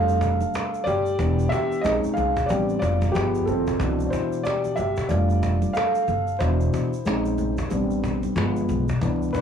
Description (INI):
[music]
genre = hip hop, jazz-hop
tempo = 92 BPM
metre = 4/4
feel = swing 61% on 16ths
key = C major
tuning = A4 = 441 Hz
[part]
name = dark baby grand piano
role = accompaniment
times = 0.0-9.4 s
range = B2 to F5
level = -23 LUFS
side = left 1 dB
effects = none
[part]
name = upright bass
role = bass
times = 0.0-9.3 s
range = E1 to C2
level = -25 LUFS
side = equal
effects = transformer saturation
[part]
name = egg shaker and congas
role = percussion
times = 0.1-9.4 s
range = none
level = -36 LUFS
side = right 9 dB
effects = none
[part]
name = cajon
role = drums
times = 0.2-9.4 s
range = none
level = -31 LUFS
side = right 1 dB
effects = none
[sound]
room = light reverb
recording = blown-out, overdriven recording, vinyl crackle, overdrive, small room ambience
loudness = -21 LUFS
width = side -8 dB against mid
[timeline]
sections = 0.0-9.4 A section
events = grand piano solo 0.0-9.4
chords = 0.0 F69; 1.2 Em7; 1.8 Bbm11; 2.5 Am11; 3.1 G7b9; 3.8 Cmaj9; 5.1 F69; 6.4 Cmaj9/E; 7.1 Bbm11; 7.7 Am11; 8.4 G7b9